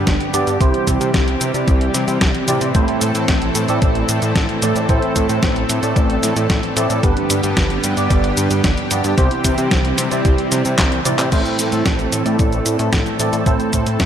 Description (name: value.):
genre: italo disco.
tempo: 112 BPM.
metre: 4/4.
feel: straight.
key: A minor.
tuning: A4 = 440 Hz.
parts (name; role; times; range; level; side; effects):
lush unison pad; sustained chords; 0.0-14.1 s; D3 to A4; -22 LUFS; equal; chorus.
tine electric piano; stabs; 0.0-14.1 s; G2 to D5; -20 LUFS; right 3 dB; ensemble chorus, digital delay.
fat analog bass; bass; 0.0-14.1 s; G1 to C3; -21 LUFS; left 1 dB; digital delay.
clean 12-bit digital drum machine; drums; 0.1-14.1 s; cabasa, crash cymbal, handclaps, hi-hat, snare drum; -21 LUFS; left 1 dB; gated reverb.
electronic kick drum; drums; 0.1-14.1 s; none; -18 LUFS; equal; none.
room: light reverb, digital ambience.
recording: none.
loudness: -14 LUFS.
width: side -9 dB against mid.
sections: 0.0-11.3 A section; 11.3-14.1 B section.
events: drum fill 10.8-11.3.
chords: 0.0 G; 0.6 C; 2.7 Am; 7.0 G; 9.2 C; 11.3 Am.